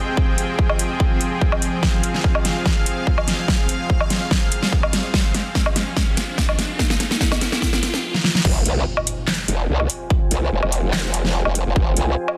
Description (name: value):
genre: heavy wobble dubstep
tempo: 145 BPM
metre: 4/4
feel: half-time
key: F minor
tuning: A4 = 441 Hz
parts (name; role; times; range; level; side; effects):
- supersaw pad; sustained chords; 0.0-12.4 s; F3 to Ab5; -29 LUFS; equal; sidechain pumping, low-pass filter
- electronic kick drum; drums; 0.2-11.8 s; none; -22 LUFS; equal; overdrive, studio reverb
- dubstep drum kit; drums; 0.4-12.4 s; crash cymbal, handclaps, hi-hat, snare drum, woodblock; -24 LUFS; equal; studio reverb
- riser and impact; sound effects; 3.8-10.1 s; none; -33 LUFS; equal; none
- growl bass; bass; 8.4-12.2 s; F1 to C2; -22 LUFS; equal; chorus, overdrive
room: light reverb, digital ambience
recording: dense, heavily limited modern master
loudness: -20 LUFS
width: mono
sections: 0.0-8.4 A section; 8.4-12.4 B section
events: build-up 0.0-8.4; drum fill 1.8-8.0, 8.1-8.4; riser 3.8-8.0; drop 8.4-12.4; impact 8.4-10.1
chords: 0.0 Fmadd9